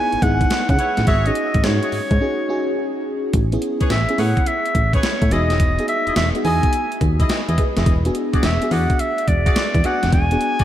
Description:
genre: R&B, new jack swing.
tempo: 106 BPM.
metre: 4/4.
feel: swing 66% on 16ths.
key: unclear.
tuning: A4 = 440 Hz.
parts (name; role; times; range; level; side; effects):
clear clarinet; melody; 0.0-10.6 s; C#5 to G#5; -22 LUFS; equal; tape echo.
FM electric piano with soft pad layer; accompaniment; 0.0-10.6 s; B3 to D#5; -24 LUFS; equal; chorus.
solid FM bass; bass; 0.1-10.6 s; E1 to C#3; -20 LUFS; equal; none.
gated 80s digital drum machine; drums; 0.1-10.6 s; hi-hat, kick drum, snare drum; -20 LUFS; equal; gated reverb, gated reverb snare.
warm horn section; stabs; 0.8-10.6 s; E4 to D#5; -30 LUFS; left 2 dB; tape echo.
room: moderate church reverb, RT60 3.5 s.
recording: dreamy mix soaked in reverb.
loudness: -16 LUFS.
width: side -12 dB against mid.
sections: 0.0-3.3 A section; 3.3-10.6 B section.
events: break 2.2-3.3.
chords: 0.0 C#m7; 1.1 G#7sus4; 3.3 Amaj9; 5.3 Emaj7; 7.9 E9.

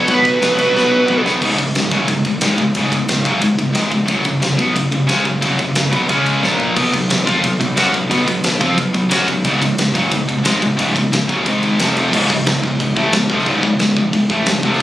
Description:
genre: heavy metal.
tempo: 179 BPM.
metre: 4/4.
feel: straight.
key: unclear.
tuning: A4 = 440 Hz.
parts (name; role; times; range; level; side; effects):
high-gain lead guitar; melody; 0.0-1.2 s; B4; -15 LUFS; right 2 dB; distortion, digital delay.
high-gain lead guitar; second line; 0.0-1.2 s; F#4; -24 LUFS; right 1 dB; distortion, digital delay.
high-gain distorted guitar; riff; 0.0-14.8 s; C#2 to F#4; -16 LUFS; equal; distortion.
fuzz fingered electric bass; bass; 0.0-14.8 s; C#1 to F#2; -24 LUFS; equal; overdrive.
big rock drum kit; drums; 0.1-14.8 s; crash cymbal, kick drum, ride cymbal, snare drum, toms; -19 LUFS; equal; none.
room: little or no reverb.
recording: recorded on a phone in the room, studio reverb.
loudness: -13 LUFS.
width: side -14 dB against mid.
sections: 0.0-1.4 A section; 1.4-12.1 B section; 12.1-14.8 C section.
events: drum fill 0.7-1.4, 6.4-6.8.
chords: 0.0 B5; 1.4 C#5; 4.1 F#5; 6.1 C#5; 6.4 A#5; 6.8 B5; 9.4 C#5; 11.5 G#5; 11.8 F5; 12.1 C#.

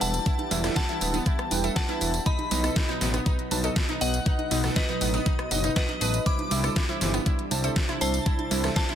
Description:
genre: progressive house.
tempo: 120 BPM.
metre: 4/4.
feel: straight.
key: unclear.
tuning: A4 = 444 Hz.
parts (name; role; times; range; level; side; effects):
glassy synth bell; melody; 0.0-8.9 s; B4 to D6; -33 LUFS; left 3 dB; chorus, digital delay.
airy dreamy lead; second line; 0.0-8.9 s; D#5 to D6; -38 LUFS; equal; chorus, phaser, cassette tape, sidechain pumping, digital delay.
shimmering ambient pad; sustained chords; 0.0-8.9 s; C3 to G4; -38 LUFS; equal; none.
deep mellow chord stab; stabs; 0.0-8.9 s; B2 to A5; -31 LUFS; right 2 dB; chorus, sidechain pumping, digital delay.
fat analog bass; bass; 0.0-8.7 s; D1 to C2; -28 LUFS; equal; sidechain pumping.
pop drum kit; drums; 0.0-8.9 s; hi-hat, rim click, snare drum, tambourine; -30 LUFS; equal; overdrive, sidechain pumping on hats, sidechain pumping on perc.
wide unison pluck; arpeggios; 0.3-8.9 s; E3 to D#5; -34 LUFS; equal; sidechain pumping, digital delay.
electronic kick drum; drums; 0.3-8.9 s; none; -26 LUFS; equal; overdrive.
congas; percussion; 0.4-8.9 s; none; -37 LUFS; right 7 dB; sidechain pumping on perc.
room: digital ambience.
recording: dense, heavily limited modern master.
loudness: -23 LUFS.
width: side -9 dB against mid.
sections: 0.0-8.9 A section.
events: none.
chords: 0.0 Em7; 2.3 B; 6.3 Cadd9.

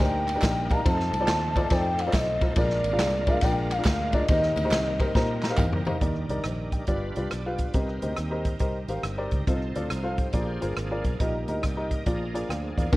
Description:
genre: uptempo gospel.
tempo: 139 BPM.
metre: 4/4.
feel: swing 65% on 8ths.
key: Eb major.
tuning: A4 = 442 Hz.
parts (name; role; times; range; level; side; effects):
gliding portamento lead; melody; 0.0-5.6, 12.9-13.0 s; D4 to Bb5; -28 LUFS; left 1 dB; chorus.
warm upright piano; accompaniment; 0.0-13.0 s; G2 to Bb5; -30 LUFS; left 1 dB; none.
bright tonewheel organ; sustained chords; 0.0-13.0 s; Eb3 to G5; -36 LUFS; right 2 dB; slow rotary speaker, overdrive, chorus vibrato.
fingered electric bass; bass; 0.0-13.0 s; G1 to Bb2; -30 LUFS; equal; none.
swinging big-band drum kit; drums; 0.0-13.0 s; crash cymbal, hi-hat, kick drum, ride cymbal, rim click, snare drum, toms; -27 LUFS; equal; none.
tambourine and handclaps; percussion; 0.0-5.9, 12.9-13.0 s; none; -39 LUFS; right 2 dB; none.
room: light reverb.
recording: worn, warbling old tape, cassette tape, warbly pitch drift.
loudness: -23 LUFS.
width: side -19 dB against mid.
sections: 0.0-6.0 A section; 6.0-12.9 B section.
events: drum fill 5.1-6.0; upright piano fill 5.1-6.0, 12.1-12.9.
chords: 0.0 Ebmaj7; 0.9 F7; 2.6 Bb7; 4.3 Eb6; 6.0 Ebmaj7; 6.9 G7; 7.7 Cm7; 9.5 F7/C; 10.3 Bb7; 11.2 Eb/Bb; 12.1 Bb7.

